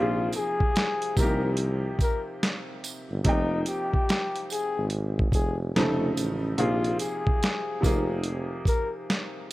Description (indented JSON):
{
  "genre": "lo-fi hip hop",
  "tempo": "72 BPM",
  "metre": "4/4",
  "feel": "swing 65% on 16ths",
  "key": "F minor",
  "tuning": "A4 = 440 Hz",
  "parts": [
    { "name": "mellow flugelhorn", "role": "melody", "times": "0.0-8.9 s", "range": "Eb4 to Bb4", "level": "-30 LUFS", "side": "left 3 dB", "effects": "none" },
    { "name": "clear upright piano", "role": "accompaniment", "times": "0.0-9.5 s", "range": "C3 to G5", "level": "-31 LUFS", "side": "right 1 dB", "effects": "cassette tape" },
    { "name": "mellow tuba", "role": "bass", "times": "0.0-8.6 s", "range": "F1 to C2", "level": "-29 LUFS", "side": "equal", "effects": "none" },
    { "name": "dusty soul sampler-style drum kit", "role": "drums", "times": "0.3-9.3 s", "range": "hi-hat, kick drum, snare drum", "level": "-26 LUFS", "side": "equal", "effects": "none" },
    { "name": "tambourine", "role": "percussion", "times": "0.3-8.9 s", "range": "none", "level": "-40 LUFS", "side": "right 6 dB", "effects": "none" }
  ],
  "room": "small room ambience",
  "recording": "none",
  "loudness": "-24 LUFS",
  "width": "side -17 dB against mid",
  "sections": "0.0-9.5 A section",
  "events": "none",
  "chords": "0.0 Bb9sus4; 1.2 Cm7; 3.2 Fm11; 5.8 F7b13; 6.6 Bb9sus4; 7.8 Fm11",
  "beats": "0.75 1.58 2.42 | 3.25 4.08 4.92 5.75 | 6.58 7.42 8.25 9.08"
}